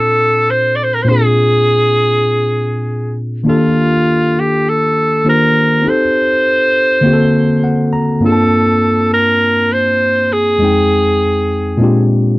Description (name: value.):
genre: soul.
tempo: 101 BPM.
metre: 4/4.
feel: swing 54% on 16ths.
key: Bb major.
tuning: A4 = 440 Hz.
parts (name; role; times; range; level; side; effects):
bright alto saxophone; melody; 0.0-12.1 s; F4 to D5; -13 LUFS; equal; none.
tine electric piano; accompaniment; 0.0-12.4 s; F2 to Bb5; -14 LUFS; equal; none.
room: light reverb.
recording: dry, close 1970s-style studio recording.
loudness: -10 LUFS.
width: side -20 dB against mid.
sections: 0.0-12.4 A section.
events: tine electric piano fill 7.3-8.2.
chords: 0.0 Bbmaj9; 1.1 Bb9; 3.5 Ebmaj9#11; 5.8 Am7b5; 7.0 D7b13; 8.2 Gm11; 10.6 Fm9; 11.8 Bb13.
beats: 0.48 | 1.08 1.68 2.27 2.87 | 3.46 4.06 4.66 5.25 | 5.85 6.44 7.04 7.63 | 8.23 8.83 9.42 10.02 | 10.61 11.21 11.81.